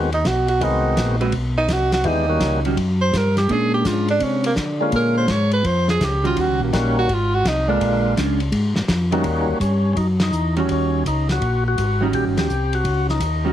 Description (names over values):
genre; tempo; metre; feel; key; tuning
soul jazz organ trio; 167 BPM; 4/4; swing 66% on 8ths; unclear; A4 = 442 Hz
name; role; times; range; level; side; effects
percussive tonewheel organ; melody; 0.0-2.6, 4.8-13.5 s; D3 to G4; -23 LUFS; left 2 dB; slow rotary speaker, overdrive, plate reverb
tonewheel organ; bass; 0.0-13.5 s; G1 to D3; -21 LUFS; equal; slow rotary speaker
clear tenor saxophone; melody; 0.1-8.2 s; Bb3 to C#5; -21 LUFS; right 2 dB; plate reverb
warm soul drum kit; drums; 0.1-13.3 s; hi-hat, kick drum, ride cymbal, snare drum; -27 LUFS; left 1 dB; none
hollow-body jazz guitar; accompaniment; 1.2-13.5 s; Eb3 to B4; -23 LUFS; right 4 dB; none
room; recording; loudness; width
light reverb; heavily compressed radio sound; -17 LUFS; side -11 dB against mid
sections
0.0-9.2 A section; 9.2-13.5 B section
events
tenor saxophone solo 0.0-9.2; band accent 10.1, 12.3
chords
0.0 Ab7#9; 2.0 Eb7#9; 3.5 Bb7#9; 6.4 Eb7#9; 7.1 Ab; 7.8 Bb7#9; 9.2 Eb7#9